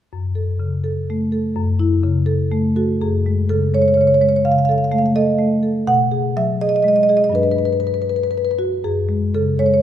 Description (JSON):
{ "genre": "classical, contemporary piece for solo marimba", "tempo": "83 BPM (dotted quarters)", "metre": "6/8", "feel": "rubato", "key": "F# dorian", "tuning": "A4 = 439 Hz", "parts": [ { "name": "marimba with medium mallets", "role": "solo", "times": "0.1-9.8 s", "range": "F#2 to F#5", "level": "-15 LUFS", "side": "equal", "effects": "none" } ], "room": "wet recital hall reverb, RT60 1.7 s", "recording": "minimal, uncompressed stereo recording", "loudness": "-15 LUFS", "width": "side -10 dB against mid", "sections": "0.1-3.0 A section; 3.0-9.8 B section", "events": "none", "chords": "0.1 F#m7; 3.0 F#sus2; 4.5 C#aug; 5.9 B6; 7.3 Gmaj7; 8.8 F#sus2", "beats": "| 0.12 0.85 | 1.56 2.28 | 3.02 3.74 | 4.45 5.16 | 5.87 6.59 | 7.34 8.09 | 8.85 9.57" }